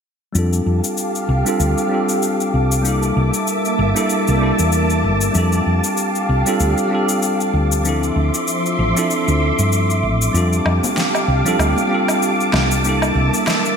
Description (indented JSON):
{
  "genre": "sunset chillout",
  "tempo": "96 BPM",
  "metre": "4/4",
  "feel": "swing 57% on 16ths",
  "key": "F major",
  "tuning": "A4 = 439 Hz",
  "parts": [
    { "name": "bell-like tine electric piano", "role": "accompaniment", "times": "0.3-13.8 s", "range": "F3 to A4", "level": "-20 LUFS", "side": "moving between left 3 dB and right 3 dB", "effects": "auto-pan, low-pass filter, digital delay" },
    { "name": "soft string machine", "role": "sustained chords", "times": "0.4-13.8 s", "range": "F3 to D6", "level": "-20 LUFS", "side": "equal", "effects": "ensemble chorus" },
    { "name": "woody fretless electric bass", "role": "bass", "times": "0.4-13.3 s", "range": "G1 to G2", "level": "-18 LUFS", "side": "equal", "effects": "none" },
    { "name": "electronic cabasa, woodblock and snare drum", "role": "drums", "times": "0.4-13.8 s", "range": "none", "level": "-24 LUFS", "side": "left 2 dB", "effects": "overdrive, small room ambience, gated reverb" },
    { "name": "congas", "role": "percussion", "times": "10.8-13.4 s", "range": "none", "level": "-28 LUFS", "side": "left 3 dB", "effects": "none" }
  ],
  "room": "wet lush hall reverb, RT60 1.9 s, digital ambience",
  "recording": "bright 1980s-style digital production",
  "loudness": "-15 LUFS",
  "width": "side -6 dB against mid",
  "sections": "0.3-13.8 A section",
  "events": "filter sweep on tine electric piano 0.3-13.8",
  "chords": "0.3 F69; 2.8 C13; 5.3 F69; 7.8 Dm9; 10.3 F69; 12.8 C13"
}